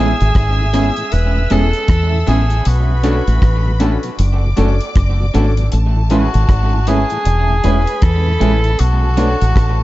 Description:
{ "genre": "lovers rock reggae", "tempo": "78 BPM", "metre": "4/4", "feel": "swing 61% on 16ths", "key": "unclear", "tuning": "A4 = 440 Hz", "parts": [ { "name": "clear tenor saxophone", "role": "melody", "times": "0.0-9.8 s", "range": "F#4 to B4", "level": "-21 LUFS", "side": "equal", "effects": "tape echo" }, { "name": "warm studio string section", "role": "second line", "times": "0.0-9.8 s", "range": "A3 to E6", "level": "-27 LUFS", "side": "left 1 dB", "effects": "none" }, { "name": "clear grand piano", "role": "accompaniment", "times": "0.0-9.3 s", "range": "B3 to C#5", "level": "-23 LUFS", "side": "left 4 dB", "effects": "none" }, { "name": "tonewheel organ", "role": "accompaniment", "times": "0.0-9.8 s", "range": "A2 to D4", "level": "-28 LUFS", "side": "left 2 dB", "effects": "none" }, { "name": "electric guitar through a small old amp", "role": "stabs", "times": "0.0-9.3 s", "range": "G#3 to B4", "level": "-22 LUFS", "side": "right 4 dB", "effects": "dub echo" }, { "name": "deep dub fingered electric bass", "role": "bass", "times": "0.0-9.8 s", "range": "E1 to E2", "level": "-14 LUFS", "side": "equal", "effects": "none" }, { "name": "deep reggae drum kit", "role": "drums", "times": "0.2-9.8 s", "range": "hi-hat, kick drum, rim click", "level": "-16 LUFS", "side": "equal", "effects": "none" } ], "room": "small room ambience", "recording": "dark, warm production, nothing above 7.8 kHz", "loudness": "-12 LUFS", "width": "side -17 dB against mid", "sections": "0.0-9.8 A section", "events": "none", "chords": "0.0 Amaj7; 2.6 Bm7; 5.7 Amaj7; 8.8 Bm7" }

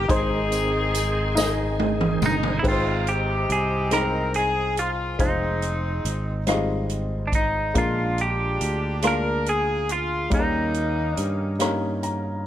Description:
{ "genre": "slow gospel", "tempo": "47 BPM (dotted quarters)", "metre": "6/8", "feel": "straight", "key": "Ab major", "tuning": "A4 = 441 Hz", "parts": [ { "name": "edgy saxophone section", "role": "melody", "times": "0.0-11.6 s", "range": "G3 to Bb4", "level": "-28 LUFS", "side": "left 2 dB", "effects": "slapback echo" }, { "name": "warm baby grand piano", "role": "accompaniment", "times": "0.0-12.5 s", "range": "Ab2 to Bb5", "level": "-28 LUFS", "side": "left 3 dB", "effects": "none" }, { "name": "bright tonewheel organ", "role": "sustained chords", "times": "0.0-2.6 s", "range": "Eb3 to Ab4", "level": "-31 LUFS", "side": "right 4 dB", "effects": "chorus vibrato, slow rotary speaker" }, { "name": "fingered electric bass", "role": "bass", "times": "0.0-12.5 s", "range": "F1 to G2", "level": "-27 LUFS", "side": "right 1 dB", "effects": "none" }, { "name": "swinging big-band drum kit", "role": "drums", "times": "0.1-12.2 s", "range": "crash cymbal, hi-hat, kick drum, rim click, snare drum, toms", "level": "-27 LUFS", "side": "right 2 dB", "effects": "none" }, { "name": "tambourine", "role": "percussion", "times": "0.5-2.6 s", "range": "none", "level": "-33 LUFS", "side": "right 8 dB", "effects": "none" }, { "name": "semi-hollow electric guitar", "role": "melody", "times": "2.3-11.6 s", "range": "D4 to Bb4", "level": "-27 LUFS", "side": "right 3 dB", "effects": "none" } ], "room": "light reverb, small room ambience", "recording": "none", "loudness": "-21 LUFS", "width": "side -11 dB against mid", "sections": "0.0-2.6 A section; 2.6-12.5 B section", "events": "drum fill 1.4-2.6; grand piano fill 11.6-12.5", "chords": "0.1 Ab; 2.6 Abmaj7; 5.2 Fm7; 7.8 Bb7; 10.3 Eb7" }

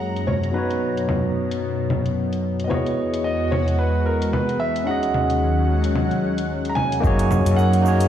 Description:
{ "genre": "sunset chillout", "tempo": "111 BPM", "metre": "4/4", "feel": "swing 57% on 16ths", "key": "F# mixolydian", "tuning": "A4 = 439 Hz", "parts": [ { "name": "warm grand piano", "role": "melody", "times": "0.0-8.1 s", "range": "A#4 to A#5", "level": "-26 LUFS", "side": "right 1 dB", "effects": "digital delay" }, { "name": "barky tine electric piano", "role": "accompaniment", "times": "0.0-8.1 s", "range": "F#3 to D#5", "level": "-24 LUFS", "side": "equal", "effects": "overdrive, auto-pan, digital delay" }, { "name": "lush unison pad", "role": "sustained chords", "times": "0.0-8.1 s", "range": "D#2 to A#5", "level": "-24 LUFS", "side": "equal", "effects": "chorus, phaser" }, { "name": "electronic hi-hat, congas and cabasa", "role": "drums", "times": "0.2-8.1 s", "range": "none", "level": "-27 LUFS", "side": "equal", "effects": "overdrive, low-pass filter on perc, low-pass filter on hats, low-pass filter on room" }, { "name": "fretless electric bass", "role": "bass", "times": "7.0-8.1 s", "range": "F#2", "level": "-18 LUFS", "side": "equal", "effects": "none" }, { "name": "electronic kick drum", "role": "drums", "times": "7.0-7.2 s", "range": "none", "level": "-22 LUFS", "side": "equal", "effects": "overdrive" } ], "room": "moderate lush hall reverb, RT60 2.5 s", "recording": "played on a big sound system in a bare room, stone room reverb", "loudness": "-19 LUFS", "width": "side -10 dB against mid", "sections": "0.0-7.0 A section; 7.0-8.1 B section", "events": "none", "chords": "0.0 F#69; 0.5 Bmaj9/F#; 2.7 Emaj9; 4.9 D#m7; 7.0 F#69" }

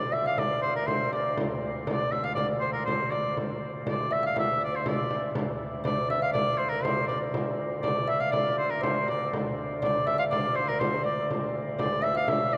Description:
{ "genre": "medieval dance", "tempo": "121 BPM", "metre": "2/4", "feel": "straight", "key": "D minor", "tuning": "A4 = 440 Hz", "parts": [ { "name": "bright shawm", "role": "melody", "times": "0.0-12.6 s", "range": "Bb4 to F5", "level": "-32 LUFS", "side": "equal", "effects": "none" }, { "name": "kalimba", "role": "second line", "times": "0.0-12.6 s", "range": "Bb4 to F5", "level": "-33 LUFS", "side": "equal", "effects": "none" }, { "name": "hand-pumped harmonium", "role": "drone", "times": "0.0-12.6 s", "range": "D2", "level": "-39 LUFS", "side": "equal", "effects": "none" }, { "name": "frame drum", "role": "percussion", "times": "0.1-12.5 s", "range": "none", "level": "-34 LUFS", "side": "equal", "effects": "none" } ], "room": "wet cathedral reverb, RT60 5.9 s", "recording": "recorded in a church or concert hall", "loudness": "-28 LUFS", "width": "mono", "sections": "0.0-5.4 A section; 5.4-12.6 A section", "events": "none", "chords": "none" }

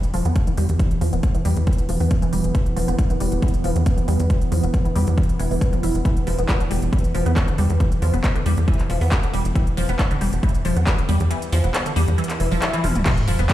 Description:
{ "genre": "driving peak-time techno", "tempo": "137 BPM", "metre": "4/4", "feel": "straight", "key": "unclear", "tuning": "A4 = 440 Hz", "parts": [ { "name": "deep dark ambient pad", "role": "drone", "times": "0.5-13.1 s", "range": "E3 to B3", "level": "-29 LUFS", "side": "right 2 dB", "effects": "chorus, built-in reverb, sidechain pumping" }, { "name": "techno drum kit", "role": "drums", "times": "0.0-13.5 s", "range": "crash cymbal, handclaps, hi-hat, toms", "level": "-29 LUFS", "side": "equal", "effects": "overdrive, sidechain pumping on hats, studio reverb, sidechain pumping on toms, sidechain pumping on cymbals" }, { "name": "resonant blip pluck", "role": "riff", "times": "0.1-13.4 s", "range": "D3 to E4", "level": "-26 LUFS", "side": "equal", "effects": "phaser, tube saturation, wide subtle chorus, sidechain pumping, ping-pong delay" }, { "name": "tight sequencer bass", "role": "bass", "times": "0.1-13.5 s", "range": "D1 to E2", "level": "-20 LUFS", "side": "equal", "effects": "sidechain pumping" }, { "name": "electronic kick drum", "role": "drums", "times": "0.4-13.5 s", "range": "none", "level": "-20 LUFS", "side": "equal", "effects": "overdrive, studio reverb" }, { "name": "swell and sub drop", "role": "sound effects", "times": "12.3-13.5 s", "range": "none", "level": "-25 LUFS", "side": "equal", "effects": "none" } ], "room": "little or no reverb", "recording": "played on a big sound system in a bare room, stone room reverb", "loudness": "-18 LUFS", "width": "side -14 dB against mid", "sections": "0.0-13.1 A section", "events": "filter sweep on synth arpeggio sound 0.0-13.1; kick drops out 11.3-13.1; swell 12.3-13.1; drum fill 12.8; impact 13.1-13.5", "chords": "0.0 E5" }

